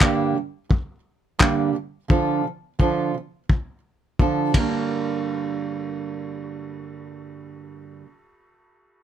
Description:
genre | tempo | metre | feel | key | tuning
acoustic pop | 86 BPM | 4/4 | swing 55% on 16ths | G minor | A4 = 438 Hz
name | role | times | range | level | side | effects
fingerpicked acoustic archtop guitar | accompaniment | 0.0-8.1 s | G2 to Bb4 | -24 LUFS | right 4 dB | none
cloth-damped thuddy drum kit | drums | 0.0-4.7 s | handclaps, kick drum, ride cymbal | -19 LUFS | left 1 dB | none
room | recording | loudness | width
little or no reverb | none | -21 LUFS | side -10 dB against mid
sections
0.0-4.9 A section; 4.9-7.7 B section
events
none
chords
0.0 Gm; 2.1 Dm; 4.5 Gm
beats
0.00 0.70 1.40 | 2.10 2.79 3.49 4.19 | 4.89 5.59 6.29 6.99

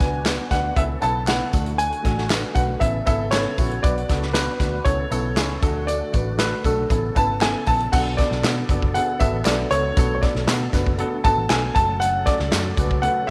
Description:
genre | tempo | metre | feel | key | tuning
uptempo 1960s-style soul | 117 BPM | 4/4 | straight | unclear | A4 = 441 Hz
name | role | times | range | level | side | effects
clear concert grand piano | melody | 0.0-13.3 s | A4 to A5 | -26 LUFS | equal | none
warm upright piano | accompaniment | 0.0-13.3 s | A3 to B4 | -30 LUFS | equal | none
tonewheel organ | sustained chords | 0.0-13.3 s | C#3 to A4 | -35 LUFS | equal | none
vintage muted picked electric bass | bass | 0.0-13.1 s | F#1 to B2 | -28 LUFS | equal | tube saturation
natural country drum kit | drums | 0.0-13.2 s | crash cymbal, hi-hat, kick drum, snare drum | -25 LUFS | equal | none
tambourine and handclaps | percussion | 0.0-12.9 s | none | -35 LUFS | equal | none
room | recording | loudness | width
light reverb, small room ambience | lossy compression artefacts | -21 LUFS | mono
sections
0.0-7.9 A section; 7.9-13.3 B section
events
none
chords
0.0 Bm; 0.8 Aadd9; 1.5 D; 2.8 Aadd9; 3.8 Bm; 4.9 Aadd9; 5.6 D; 6.9 Aadd9; 7.9 Bm7; 11.8 F#m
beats
0.26 0.77 1.28 | 1.79 2.30 2.81 3.33 | 3.84 4.35 4.86 5.37 | 5.88 6.39 6.90 7.41 | 7.92 8.44 8.95 9.46 | 9.97 10.48 10.99 11.50 | 12.01 12.52 13.03

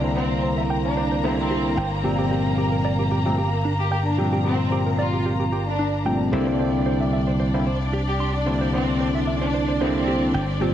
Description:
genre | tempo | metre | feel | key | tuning
nu-disco | 112 BPM | 4/4 | swing 53% on 16ths | unclear | A4 = 440 Hz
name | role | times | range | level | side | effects
overdriven tine electric piano | accompaniment | 0.0-10.7 s | Bb2 to E4 | -24 LUFS | left 1 dB | phaser, tape echo
warm studio string section | sustained chords | 0.0-10.7 s | Bb3 to Bb5 | -29 LUFS | equal | none
direct-recorded clean electric guitar | riff | 0.0-10.7 s | D4 to C6 | -31 LUFS | right 3 dB | wide subtle chorus, low-pass filter, tape echo
slap bass | bass | 0.0-10.7 s | G1 to C2 | -25 LUFS | equal | tube saturation
warm symphonic violin section | melody | 0.2-10.3 s | C4 to G4 | -28 LUFS | equal | vintage 12-bit sampler grit, analog delay
room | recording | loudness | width
wet spring reverb, RT60 1.8 s, studio reverb | echo-heavy mix | -20 LUFS | side -10 dB against mid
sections
0.0-10.7 A section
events
none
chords
0.0 C9; 1.8 Gm11; 6.3 C9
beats
0.43 0.97 1.50 | 2.04 2.58 3.11 3.65 | 4.18 4.72 5.25 5.79 | 6.33 6.86 7.40 7.93 | 8.47 9.00 9.54 10.08 | 10.61

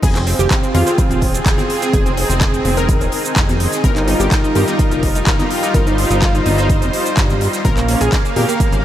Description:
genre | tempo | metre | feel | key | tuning
progressive house | 126 BPM | 4/4 | straight | F minor | A4 = 440 Hz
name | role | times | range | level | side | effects
supersaw pad | sustained chords | 0.0-8.8 s | G3 to F5 | -20 LUFS | equal | lush chorus, sidechain pumping
analog pluck | arpeggios | 0.0-8.8 s | Bb3 to Bb4 | -20 LUFS | equal | chorus, sidechain pumping, diffuse ambient delay
fat analog bass | bass | 0.0-8.8 s | Eb1 to Bb2 | -19 LUFS | equal | sidechain pumping
big-room dance drum kit | drums | 0.0-8.8 s | crash cymbal, handclaps, hi-hat, shaker | -23 LUFS | right 1 dB | high-pass filter on hats, studio reverb, high-pass filter on perc, high-pass filter on snare, high-pass filter on cymbals
electronic kick drum | drums | 0.0-8.7 s | none | -16 LUFS | equal | studio reverb
natural country drum kit | drums | 0.0-8.7 s | hi-hat, snare drum | -32 LUFS | left 2 dB | none
congas, woodblock and cowbell | percussion | 0.0-8.8 s | none | -27 LUFS | left 1 dB | none
room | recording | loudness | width
light reverb, small room ambience | none | -13 LUFS | side -12 dB against mid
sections
0.0-8.8 A section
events
drop 0.0-8.8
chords
0.0 Fm; 3.8 Ebadd9; 7.7 Bbm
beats
| 0.03 0.51 0.98 1.46 | 1.94 2.41 2.89 3.36 | 3.84 4.32 4.79 5.27 | 5.75 6.22 6.70 7.17 | 7.65 8.13 8.60

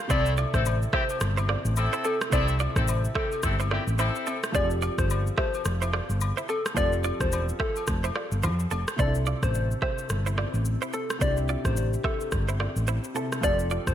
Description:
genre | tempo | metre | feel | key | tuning
afrobeats | 108 BPM | 4/4 | swing 58% on 16ths | C major | A4 = 438 Hz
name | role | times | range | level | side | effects
warm baby grand piano | accompaniment | 0.0-13.9 s | C3 to A5 | -34 LUFS | equal | wide subtle chorus
soft struck synth lead | melody | 0.1-13.9 s | A4 to D5 | -31 LUFS | left 2 dB | chorus, ping-pong delay
warm horn section | second line | 0.1-4.4 s | A3 to A4 | -32 LUFS | left 2 dB | none
direct-recorded clean electric guitar | riff | 0.1-13.8 s | C4 to E5 | -34 LUFS | right 6 dB | wide subtle chorus, ping-pong delay
hollow-body short-scale fingered electric bass | bass | 0.1-13.9 s | E1 to F2 | -27 LUFS | equal | none
afro-pop drum kit | drums | 0.1-13.9 s | kick drum, rim click, shaker | -30 LUFS | equal | gated reverb
agogo bells and woodblock | percussion | 0.1-8.9 s | none | -38 LUFS | left 8 dB | none
room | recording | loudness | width
light reverb, small room reverb | bright 1980s-style digital production | -24 LUFS | side -10 dB against mid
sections
0.0-9.0 A section; 9.0-13.9 B section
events
none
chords
0.1 C6; 4.5 Fadd9; 9.0 C6; 13.4 Fadd9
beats
| 0.10 0.66 1.21 1.77 | 2.32 2.88 3.43 3.99 | 4.54 5.10 5.66 6.21 | 6.77 7.32 7.88 8.43 | 8.99 9.54 10.10 10.66 | 11.21 11.77 12.32 12.88 | 13.43

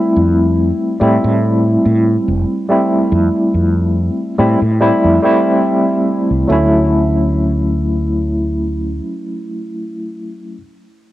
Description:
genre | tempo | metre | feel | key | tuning
vaporwave | 71 BPM | 4/4 | swing 54% on 16ths | unclear | A4 = 441 Hz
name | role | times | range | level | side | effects
barky tine electric piano | accompaniment | 0.0-10.6 s | F#3 to E4 | -14 LUFS | equal | medium tremolo, wide subtle chorus, cassette tape, tape echo
mellow fretless electric bass | bass | 0.2-9.0 s | F1 to A2 | -15 LUFS | equal | tube saturation, low-pass filter
room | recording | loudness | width
light reverb | home recording on cassette | -12 LUFS | side -15 dB against mid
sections
0.0-6.5 A section; 6.5-9.9 B section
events
filter sweep on fretless electric bass 0.0-6.5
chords
0.0 Fmaj9; 6.5 Dmaj9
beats
0.58 1.43 2.27 | 3.12 3.96 4.81 5.65 | 6.50 7.34 8.19 9.03

